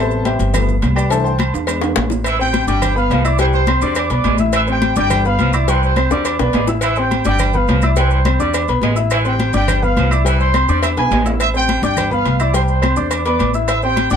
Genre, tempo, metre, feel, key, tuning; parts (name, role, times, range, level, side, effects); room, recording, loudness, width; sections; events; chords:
latin, salsa; 210 BPM; 4/4; straight; A minor; A4 = 440 Hz
clear baby grand piano; accompaniment; 0.0-14.2 s; C3 to E6; -20 LUFS; left 3 dB
upright bass; bass; 0.0-14.2 s; G1 to E2; -18 LUFS; equal
congas; percussion; 0.1-14.2 s; -24 LUFS; left 4 dB
maracas; percussion; 0.1-14.2 s; -33 LUFS; right 7 dB
agogo bells and timbales; percussion; 0.3-14.1 s; -24 LUFS; right 7 dB
cowbell and bongos; percussion; 0.3-14.2 s; -25 LUFS; left 3 dB
claves; percussion; 0.5-13.8 s; -31 LUFS; left 3 dB
mellow trumpet section; melody; 2.2-14.2 s; G4 to E6; -20 LUFS; right 2 dB
edgy saxophone section; second line; 2.3-11.3 s; E3 to G#3; -25 LUFS; right 2 dB
light reverb; dark, warm production; -13 LUFS; side -8 dB against mid
0.0-2.2 A section; 2.2-11.4 B section; 11.4-14.2 B section
grand piano solo 0.0-2.2; drum fill 1.5-2.2, 6.1-6.8, 11.0-11.4
0.0 Am7; 0.5 G7; 1.1 C6; 1.7 E7; 2.2 Am7; 2.8 G7; 3.4 C; 4.0 E7; 4.5 Am7; 5.1 G7; 5.7 C; 6.3 E7; 6.8 Am7; 7.4 G7; 8.0 C; 8.5 E7; 9.1 Am7; 9.7 G7; 10.3 C; 10.8 E7; 11.4 Am7; 12.0 G7; 12.5 C; 13.1 E5